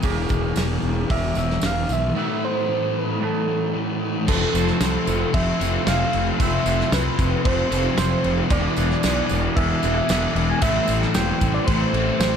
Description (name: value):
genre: rock, shoegaze and dream pop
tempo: 113 BPM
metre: 4/4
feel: straight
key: unclear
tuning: A4 = 439 Hz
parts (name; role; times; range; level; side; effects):
- soft struck synth lead; melody; 0.0-12.4 s; G#4 to G#5; -26 LUFS; right 1 dB; chorus, tape echo
- overdriven semi-hollow guitar; riff; 0.0-12.4 s; E2 to A3; -27 LUFS; right 1 dB; none
- thick fuzz guitar; riff; 0.0-12.4 s; E2 to A3; -27 LUFS; left 10 dB; distortion, wide subtle chorus
- twangy electric guitar; riff; 0.0-12.4 s; A2 to C5; -28 LUFS; right 10 dB; reverse reverb
- fuzz fingered electric bass; bass; 0.0-12.4 s; E1 to C2; -25 LUFS; equal; overdrive
- loose indie drum kit; drums; 0.0-12.3 s; crash cymbal, hi-hat, kick drum, snare drum; -24 LUFS; equal; none
- tambourine; percussion; 0.0-12.3 s; none; -37 LUFS; right 12 dB; none
room: light reverb, studio reverb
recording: none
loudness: -19 LUFS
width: side -7 dB against mid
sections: 0.0-4.3 A section; 4.3-12.4 B section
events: none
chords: 0.0 E7; 2.2 Am7; 4.3 Fmaj7; 8.5 E7; 10.6 Am7